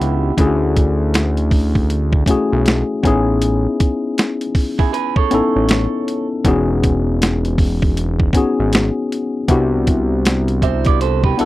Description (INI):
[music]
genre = R&B, neo-soul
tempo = 79 BPM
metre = 4/4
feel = swing 61% on 16ths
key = D lydian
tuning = A4 = 440 Hz
[part]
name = electric guitar through a small old amp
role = second line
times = 0.0-11.5 s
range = E4 to E5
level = -21 LUFS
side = right 12 dB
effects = none
[part]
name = tine electric piano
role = accompaniment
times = 0.0-11.5 s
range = A3 to F#5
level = -18 LUFS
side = left 3 dB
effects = none
[part]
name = fat analog bass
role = bass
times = 0.0-11.5 s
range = E1 to D2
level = -18 LUFS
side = right 1 dB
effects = none
[part]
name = boom bap sampler-style drum kit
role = drums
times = 0.0-11.5 s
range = hi-hat, kick drum, snare drum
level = -16 LUFS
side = right 1 dB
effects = none
[sound]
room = little or no reverb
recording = dry, close 1970s-style studio recording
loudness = -14 LUFS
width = side -16 dB against mid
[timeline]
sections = 0.0-11.5 A section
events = none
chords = 0.4 Dmaj9; 3.0 Amaj9; 6.5 Emaj9; 9.5 Cmaj9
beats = | 0.38 1.14 1.89 2.65 | 3.41 4.17 4.93 5.69 | 6.45 7.21 7.97 8.73 | 9.49 10.25 11.01